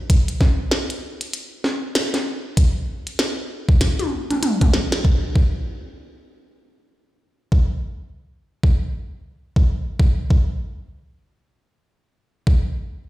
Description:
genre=glitch hop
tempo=97 BPM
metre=4/4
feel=swing 60% on 16ths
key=none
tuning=none
part: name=electronic kick drum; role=drums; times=0.1-12.6 s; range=none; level=-15 LUFS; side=equal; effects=overdrive
part: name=glitchy drum kit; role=drums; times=0.1-5.0 s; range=hi-hat, snare drum, toms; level=-23 LUFS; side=equal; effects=none
room=light reverb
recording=played on a big sound system in a bare room, stone room reverb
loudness=-18 LUFS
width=side -16 dB against mid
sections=0.0-5.0 A section; 5.0-13.1 B section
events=drum fill 3.8-5.0; band accent 4.9-5.2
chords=none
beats=| 0.10 0.72 1.34 1.95 | 2.57 3.19 3.81 4.43 | 5.05 5.67 6.28 6.90 | 7.52 8.14 8.76 9.38 | 10.00 10.61 11.23 11.85 | 12.47

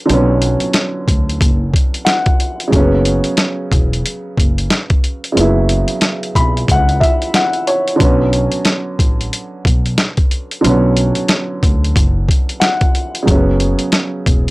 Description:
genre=hip hop, boom-bap hip-hop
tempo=91 BPM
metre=4/4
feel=swing 60% on 16ths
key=B minor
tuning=A4 = 440 Hz
part: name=dark upright piano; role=accompaniment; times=0.0-14.5 s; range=C#3 to B5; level=-17 LUFS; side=right 1 dB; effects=high-pass filter, low-pass filter
part: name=upright bass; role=bass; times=0.1-14.5 s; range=E1 to D2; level=-17 LUFS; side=equal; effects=tube saturation
part: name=boom bap sampler-style drum kit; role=drums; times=0.1-14.5 s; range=hi-hat, kick drum, snare drum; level=-14 LUFS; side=equal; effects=none
room=little or no reverb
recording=dry, gritty hardware recording, cassette tape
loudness=-12 LUFS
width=side -20 dB against mid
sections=0.0-14.5 A section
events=none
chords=0.0 Bmadd9; 2.7 F#sus4; 8.0 Bmadd9; 13.3 F#sus4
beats=| 0.09 0.75 1.41 2.07 | 2.73 3.38 4.04 4.70 | 5.36 6.02 6.68 7.34 | 8.00 8.66 9.32 9.98 | 10.64 11.30 11.96 12.62 | 13.28 13.93

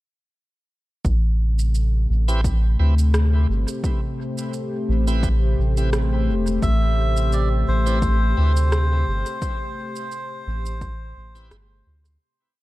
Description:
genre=ambient dub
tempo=86 BPM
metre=4/4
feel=swing 55% on 16ths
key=A minor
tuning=A4 = 443 Hz
part: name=warm analog pad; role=sustained chords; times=1.5-12.2 s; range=C3 to C5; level=-28 LUFS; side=left 2 dB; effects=chorus
part: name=soft dub sub bass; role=bass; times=1.0-12.2 s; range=E1 to D2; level=-19 LUFS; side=equal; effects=tube saturation
part: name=electronic kick drum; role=drums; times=1.0-11.0 s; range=none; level=-24 LUFS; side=equal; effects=overdrive
part: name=electronic shaker and rim click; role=drums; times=1.1-12.2 s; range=none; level=-32 LUFS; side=right 1 dB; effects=dub echo
part: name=bright tonewheel organ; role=stabs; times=2.3-11.6 s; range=C4 to B4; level=-35 LUFS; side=right 2 dB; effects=overdrive, slow rotary speaker, low-pass filter, dub echo
part: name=melodica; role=melody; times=6.6-11.5 s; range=C5 to E5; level=-28 LUFS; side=equal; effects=dub echo
room=light reverb, digital ambience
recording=none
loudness=-18 LUFS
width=side -18 dB against mid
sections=1.0-12.2 groove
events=fade-out 8.5-12.2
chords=1.0 Am9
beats=| 1.05 1.75 2.44 3.14 | 3.84 4.54 5.23 5.93 | 6.63 7.33 8.03 8.72 | 9.42 10.12 10.81 11.51

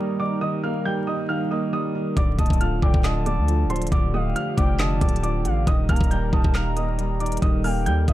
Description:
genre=hip hop, trap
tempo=137 BPM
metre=4/4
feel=half-time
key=unclear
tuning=A4 = 440 Hz
part: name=dark concert grand piano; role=melody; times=0.0-8.1 s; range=C5 to G6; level=-30 LUFS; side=equal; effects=none
part: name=felt-muted upright piano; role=accompaniment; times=0.0-8.1 s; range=D3 to Bb3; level=-27 LUFS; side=right 2 dB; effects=none
part: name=dark analog pad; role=sustained chords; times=0.0-8.1 s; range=F3 to Bb4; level=-32 LUFS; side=left 1 dB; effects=chorus
part: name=hard-hitting 808-style bass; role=bass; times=2.2-8.1 s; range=D1 to Eb2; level=-23 LUFS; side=equal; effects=none
part: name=trap drum kit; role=drums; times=2.2-8.1 s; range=handclaps, hi-hat, kick drum, snare drum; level=-22 LUFS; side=equal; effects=none
part: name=gliding portamento lead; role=second line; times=2.4-8.1 s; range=Eb5 to Bb5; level=-32 LUFS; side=left 2 dB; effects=chorus, phaser, ping-pong delay
room=little or no reverb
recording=dark, warm production, vinyl crackle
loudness=-20 LUFS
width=side -14 dB against mid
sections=0.0-8.1 A section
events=none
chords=0.0 Eb; 2.2 Dm; 5.7 Eb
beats=| 0.41 0.85 1.29 1.73 | 2.17 2.60 3.04 3.48 | 3.92 4.36 4.79 5.23 | 5.67 6.11 6.55 6.98 | 7.42 7.86

